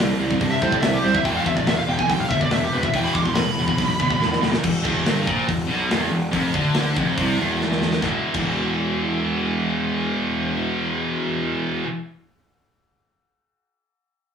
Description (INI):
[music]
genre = heavy metal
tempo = 142 BPM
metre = 4/4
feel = straight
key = E phrygian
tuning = A4 = 441 Hz
[part]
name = high-gain distorted guitar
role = riff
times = 0.0-11.9 s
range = E2 to G3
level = -25 LUFS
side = left 5 dB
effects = distortion
[part]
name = scooped high-gain guitar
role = riff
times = 0.0-11.9 s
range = E2 to G3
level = -25 LUFS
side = right 4 dB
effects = distortion
[part]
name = fuzz picked electric bass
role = bass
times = 0.0-11.6 s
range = E1 to A2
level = -26 LUFS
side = right 1 dB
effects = overdrive
[part]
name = tight metal drum kit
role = drums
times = 0.0-8.5 s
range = crash cymbal, hi-hat, kick drum, snare drum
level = -25 LUFS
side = equal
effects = none
[part]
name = high-gain lead guitar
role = melody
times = 0.5-4.5 s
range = G4 to D6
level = -23 LUFS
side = right 1 dB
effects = distortion
[sound]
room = wet studio reverb, RT60 0.6 s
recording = rough rehearsal-room recording, tube saturation, studio reverb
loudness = -19 LUFS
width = side -7 dB against mid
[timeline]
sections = 0.0-4.6 A section; 4.6-8.0 B section; 8.0-11.4 C section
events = lead electric guitar solo 0.0-4.6; drum fill 4.2-4.6, 7.6-8.0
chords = 0.0 C; 1.3 E5; 4.6 Em; 8.0 E5